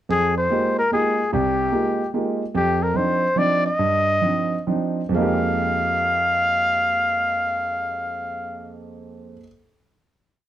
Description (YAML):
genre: jazz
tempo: 124-146 BPM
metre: 3/4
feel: swing 66% on 8ths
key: F dorian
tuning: A4 = 441 Hz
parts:
  - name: mellow trumpet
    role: melody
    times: 0.1-8.8 s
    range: G4 to F5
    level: -20 LUFS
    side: left 1 dB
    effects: none
  - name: warm concert grand piano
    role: accompaniment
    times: 0.1-9.5 s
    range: C2 to G4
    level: -24 LUFS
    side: right 2 dB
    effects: none
room: light reverb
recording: close, detailed microphones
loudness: -19 LUFS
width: side -12 dB against mid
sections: 0.1-5.2 A section; 5.2-8.0 final chord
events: slowing down 2.5-5.2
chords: 0.1 Fm11; 2.5 Cmadd9/F; 5.2 Fm11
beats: | 0.08 0.49 0.90 | 1.31 1.72 2.13 | 2.54 2.95 3.37 | 3.79 4.23 4.68 | 5.15 5.63 6.12 | 6.60 7.08 7.56